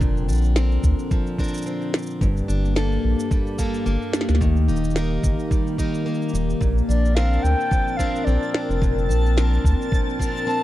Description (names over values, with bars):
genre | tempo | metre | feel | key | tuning
folktronica | 109 BPM | 4/4 | swing 56% on 16ths | Bb major | A4 = 440 Hz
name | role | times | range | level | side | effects
warbly tape-like pad | sustained chords | 0.0-10.6 s | D3 to Bb4 | -28 LUFS | left 3 dB | chorus, built-in reverb
picked plugged-in steel-string acoustic guitar | arpeggios | 0.0-10.6 s | G2 to Bb4 | -26 LUFS | equal | tape echo
round analog bass | bass | 0.0-9.8 s | Eb1 to D2 | -20 LUFS | equal | none
electronic kick drum | drums | 0.0-10.3 s | none | -22 LUFS | equal | none
electronic shaker and snare drum | drums | 0.0-10.6 s | none | -27 LUFS | equal | none
backwards swelling texture | texture | 7.2-10.6 s | A5 to A6 | -34 LUFS | left 1 dB | built-in reverb
wooden flute | melody | 6.9-10.6 s | D5 to A5 | -26 LUFS | equal | tape echo
room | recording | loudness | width
little or no reverb | dry, close 1970s-style studio recording | -19 LUFS | side -15 dB against mid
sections
0.0-10.6 A section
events
none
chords
0.0 Bbadd9; 2.2 Gmadd9; 4.4 Eb; 6.6 Bbadd9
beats
| 0.01 0.56 1.11 1.66 | 2.21 2.76 3.31 3.87 | 4.42 4.97 5.52 6.07 | 6.62 7.17 7.72 8.27 | 8.82 9.37 9.92 10.47